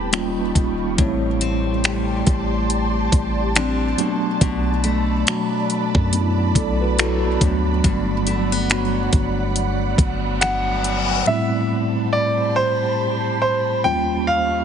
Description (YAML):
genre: contemporary R&B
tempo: 70 BPM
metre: 4/4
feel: swing 58% on 16ths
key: A dorian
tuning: A4 = 440 Hz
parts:
  - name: mellow tine electric piano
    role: accompaniment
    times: 0.0-14.6 s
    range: D#2 to D5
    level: -23 LUFS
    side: right 1 dB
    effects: medium stereo tremolo
  - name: ethereal airy pad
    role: sustained chords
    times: 0.0-14.6 s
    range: F#3 to C6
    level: -26 LUFS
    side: right 2 dB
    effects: ensemble chorus, built-in reverb
  - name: picked steel-string acoustic guitar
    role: arpeggios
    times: 0.0-11.9 s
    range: G2 to G4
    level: -26 LUFS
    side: left 6 dB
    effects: ping-pong delay
  - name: warm 808-style bass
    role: bass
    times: 0.0-11.2 s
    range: D#1 to F#2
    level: -24 LUFS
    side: equal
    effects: none
  - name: smooth R&B drum kit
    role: drums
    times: 0.1-11.1 s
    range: finger snaps, hi-hat, kick drum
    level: -19 LUFS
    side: equal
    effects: none
  - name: reverse cymbal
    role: sound effects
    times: 10.0-11.3 s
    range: none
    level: -28 LUFS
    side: left 8 dB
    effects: none
  - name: warm concert grand piano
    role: melody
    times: 10.4-14.6 s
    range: C5 to G5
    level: -20 LUFS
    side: right 1 dB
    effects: ping-pong delay
room: little or no reverb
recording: heavily compressed radio sound, multiband compression, nothing above 10.8 kHz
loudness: -17 LUFS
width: side -8 dB against mid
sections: 0.0-11.3 A section; 11.3-14.6 B section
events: reverse cymbal 10.0-11.3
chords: 0.1 D#9; 1.0 D7sus4/A; 4.0 Bm7; 7.4 Gmaj7; 11.3 Am9; 13.8 D#9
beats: 0.13 | 0.98 1.84 2.70 3.56 | 4.41 5.27 6.13 6.99 | 7.84 8.70 9.56 10.41 | 11.27 12.13 12.98 13.84